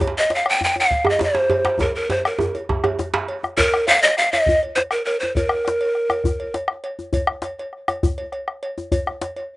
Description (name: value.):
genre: west african traditional, West African drum ensemble.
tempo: 135 BPM (dotted quarters).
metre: 12/8.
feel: straight.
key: unclear.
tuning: A4 = 440 Hz.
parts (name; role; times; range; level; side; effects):
bombo; percussion; 0.0-9.2 s; none; -23 LUFS; left 1 dB; none.
cowbell; percussion; 0.0-9.5 s; none; -30 LUFS; equal; none.
djembe; percussion; 0.0-9.4 s; none; -27 LUFS; left 3 dB; none.
djembe; percussion; 0.0-3.3 s; none; -22 LUFS; right 3 dB; none.
breathy large pan pipes; melody; 0.2-6.5 s; Bb4 to G5; -17 LUFS; equal; none.
room: little or no reverb.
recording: recorded outdoors, with no room sound, nothing above 10.6 kHz.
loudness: -18 LUFS.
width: side -19 dB against mid.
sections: 0.0-3.6 A section; 3.6-9.6 B section.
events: drum fill 1.8-3.6.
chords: none.